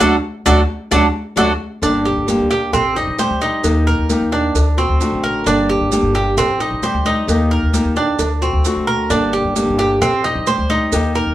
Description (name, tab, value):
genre	latin, Cuban son and guajira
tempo	132 BPM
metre	4/4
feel	straight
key	G harmonic minor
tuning	A4 = 441 Hz
part	breathy mellow silver concert flute	melody	0.0-1.5 s	F#5	-25 LUFS	right 1 dB	none
part	flamenco guitar	accompaniment	0.0-11.3 s	D3 to G4	-20 LUFS	left 2 dB	none
part	Cuban tres	arpeggios	0.0-11.3 s	C4 to C5	-17 LUFS	right 2 dB	none
part	upright bass	bass	0.0-11.3 s	G1 to Eb2	-20 LUFS	equal	none
part	bongos and cowbell	percussion	0.0-11.2 s	none	-27 LUFS	left 1 dB	none
part	congas	percussion	0.0-11.3 s	none	-26 LUFS	left 2 dB	none
part	maracas	percussion	0.0-11.3 s	none	-29 LUFS	right 7 dB	none
room	wet studio reverb, RT60 0.6 s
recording	band playing live in one room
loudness	-14 LUFS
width	side -13 dB against mid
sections	0.0-1.8 A section; 1.8-11.3 B section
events	band accent 0.0-1.8; drum fill 0.9-1.8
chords	0.0 D; 1.8 Gm; 2.7 Am7b5; 3.6 Eb; 4.6 D7; 5.5 Gm; 6.4 Am7b5; 7.3 Eb; 8.2 D7; 9.1 Gm; 10.0 Am7b5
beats	| 0.00 0.46 0.91 1.37 | 1.82 2.28 2.73 3.19 | 3.64 4.10 4.55 5.01 | 5.46 5.92 6.37 6.83 | 7.28 7.74 8.19 8.65 | 9.10 9.56 10.01 10.47 | 10.92